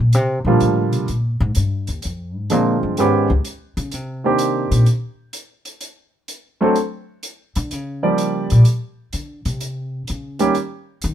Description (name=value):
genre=jazz piano trio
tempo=127 BPM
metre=4/4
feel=swing 69% on 8ths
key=unclear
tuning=A4 = 440 Hz
part: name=upright bass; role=bass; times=0.0-11.1 s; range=Db2 to Eb3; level=-18 LUFS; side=left 1 dB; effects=none
part: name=hi-hat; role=drums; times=0.1-11.1 s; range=none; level=-32 LUFS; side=equal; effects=none
part: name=clear concert grand piano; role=melody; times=0.5-10.5 s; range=D3 to D5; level=-17 LUFS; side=right 2 dB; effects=none
room=little or no reverb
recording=minimal, uncompressed stereo recording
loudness=-17 LUFS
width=side -10 dB against mid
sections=0.1-11.1 A section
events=upright bass solo 0.0-11.1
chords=0.1 Gm7; 2.0 Dm7b5; 3.0 Dbsus2; 3.9 Cm9; 5.8 N.C.; 7.7 Gm7; 9.6 N.C.